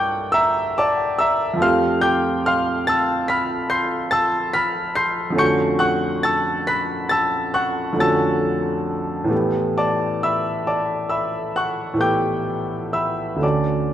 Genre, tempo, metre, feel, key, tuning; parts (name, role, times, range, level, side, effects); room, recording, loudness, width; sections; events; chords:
classical, impressionist solo piano; 40-48 BPM (dotted quarters); 9/8; rubato; A4 = 440 Hz
bright concert grand piano; solo; 0.0-13.9 s; D2 to C#7; -18 LUFS; equal
moderate concert hall reverb, RT60 1.9 s; dark, warm production; -18 LUFS; side -11 dB against mid
0.0-13.9 A section
0.0 Gm6; 1.6 Fadd9; 5.4 Dmaj7/F; 9.3 A9sus4; 13.4 Dmaj7